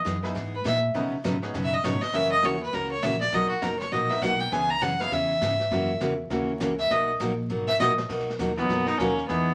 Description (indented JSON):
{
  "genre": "country, western swing",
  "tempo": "201 BPM",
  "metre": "4/4",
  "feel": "swing 62% on 8ths",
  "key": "B major",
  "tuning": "A4 = 440 Hz",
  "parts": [
    { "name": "picked steel-string acoustic guitar", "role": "accompaniment", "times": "0.0-9.5 s", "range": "B2 to B4", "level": "-31 LUFS", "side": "equal", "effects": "none" },
    { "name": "upright bass", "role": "bass", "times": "0.0-9.5 s", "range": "F#1 to B2", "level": "-35 LUFS", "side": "equal", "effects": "none" },
    { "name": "vintage brush drum kit", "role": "drums", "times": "0.1-9.5 s", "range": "brushed snare drum, crash cymbal, hi-hat, kick drum, snare drum", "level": "-40 LUFS", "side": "equal", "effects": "none" },
    { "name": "tack piano", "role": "accompaniment", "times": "0.2-9.5 s", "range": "G#3 to B4", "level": "-39 LUFS", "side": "equal", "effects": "none" },
    { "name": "clear fiddle", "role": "melody", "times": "0.5-9.5 s", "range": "B3 to A#5", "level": "-27 LUFS", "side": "equal", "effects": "none" },
    { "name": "archtop guitar, miked and amplified", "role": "second line", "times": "8.6-9.5 s", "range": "E3 to B3", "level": "-32 LUFS", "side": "equal", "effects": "none" }
  ],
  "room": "wet club reverb, RT60 0.6 s",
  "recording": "vinyl crackle",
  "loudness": "-26 LUFS",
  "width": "mono",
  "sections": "0.0-8.1 A section; 8.1-9.5 B section",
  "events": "fiddle solo 0.0-8.1; drum fill 7.5-8.1",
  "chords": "0.0 Emaj7; 0.9 Badd9; 2.1 F#7; 3.3 Bmaj7; 4.5 C#m7; 5.7 F#7; 6.9 Bmaj7",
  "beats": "0.05 0.35 0.65 | 0.95 1.24 1.54 1.84 | 2.13 2.43 2.73 3.03 | 3.33 3.62 3.92 4.22 | 4.52 4.82 5.11 5.41 | 5.71 6.01 6.31 6.60 | 6.90 7.20 7.50 7.80 | 8.10 8.39 8.69 8.99 | 9.29"
}